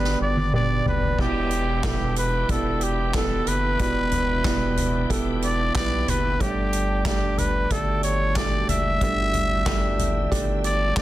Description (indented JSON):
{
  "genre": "piano-driven pop",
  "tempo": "92 BPM",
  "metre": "4/4",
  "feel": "straight",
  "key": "unclear",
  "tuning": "A4 = 440 Hz",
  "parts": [
    { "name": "growling trumpet", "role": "melody", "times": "0.0-11.0 s", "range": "G4 to E5", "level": "-26 LUFS", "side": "equal", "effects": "none" },
    { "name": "warm upright piano", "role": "accompaniment", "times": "0.0-11.0 s", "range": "G2 to D5", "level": "-27 LUFS", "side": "right 3 dB", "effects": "none" },
    { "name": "round analog bass", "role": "bass", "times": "0.0-11.0 s", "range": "E1 to D2", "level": "-27 LUFS", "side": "equal", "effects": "none" },
    { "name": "soft-mallet drum kit", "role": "drums", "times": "0.0-11.0 s", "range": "crash cymbal, handclaps, hi-hat, kick drum, snare drum, toms", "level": "-27 LUFS", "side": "equal", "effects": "none" },
    { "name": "bright tonewheel organ", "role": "sustained chords", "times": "1.2-11.0 s", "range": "E3 to G4", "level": "-36 LUFS", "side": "equal", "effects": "overdrive, chorus vibrato, slow rotary speaker" }
  ],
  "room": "light reverb, small room ambience",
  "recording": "dense, heavily limited modern master",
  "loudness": "-20 LUFS",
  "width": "side -14 dB against mid",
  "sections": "0.0-1.2 A section; 1.2-11.0 B section",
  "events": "drum fill 0.0-1.2",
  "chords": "0.0 G; 1.2 Em7; 6.4 Gsus2",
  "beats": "0.53 | 1.19 1.84 2.49 3.14 | 3.80 4.45 5.10 5.75 | 6.41 7.06 7.71 8.36 | 9.01 9.66 10.32 10.97"
}